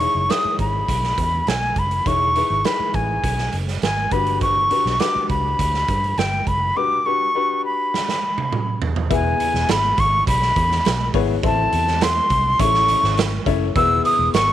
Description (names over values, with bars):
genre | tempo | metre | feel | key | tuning
uptempo 1960s-style soul | 102 BPM | 4/4 | straight | E major | A4 = 438 Hz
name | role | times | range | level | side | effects
silver concert flute | melody | 0.0-14.5 s | G5 to E6 | -19 LUFS | equal | none
clear upright piano | accompaniment | 0.0-14.5 s | B3 to E5 | -25 LUFS | left 13 dB | none
vintage muted fingered electric bass | bass | 0.0-14.5 s | E1 to G2 | -24 LUFS | equal | none
raw garage drum kit | drums | 0.0-14.5 s | hi-hat, kick drum, snare drum, toms | -24 LUFS | right 4 dB | none
room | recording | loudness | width
small room ambience | 1960s-style stereo | -17 LUFS | side -12 dB against mid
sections
0.0-9.1 A section; 9.1-14.5 B section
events
drum fill 7.9-9.1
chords
0.0 Emaj7; 4.1 Gmaj7; 9.1 E; 11.4 Am; 12.6 A; 13.8 E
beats
0.29 0.88 1.47 | 2.06 2.65 3.24 3.83 | 4.42 5.00 5.59 6.18 | 6.76 7.35 7.94 8.52 | 9.10 9.69 10.27 10.85 | 11.43 12.01 12.59 13.17 | 13.75 14.33